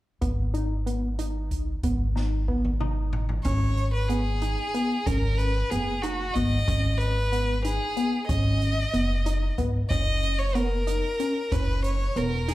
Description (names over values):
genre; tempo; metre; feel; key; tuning
progressive instrumental, band music in an uneven meter; 186 BPM (eighths); 5/8; straight; G# minor; A4 = 437 Hz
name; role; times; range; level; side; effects
tight sequenced synth; arpeggios; 0.2-12.5 s; B3 to D#4; -30 LUFS; equal; chorus, slapback echo
upright bass; bass; 0.2-12.5 s; E1 to G#1; -26 LUFS; equal; none
open jazz drum kit; drums; 0.2-12.5 s; hi-hat, kick drum, snare drum, toms; -31 LUFS; equal; none
bright violin; melody; 3.4-12.5 s; F#4 to D#5; -29 LUFS; equal; slapback echo
room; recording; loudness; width
light reverb, small room reverb; live gig heard through the venue's PA, club reverb; -23 LUFS; side -16 dB against mid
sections
0.2-3.5 A section; 3.5-12.5 B section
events
drum fill 2.2-3.5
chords
0.2 G#m; 3.5 G#m7; 9.9 F#7sus4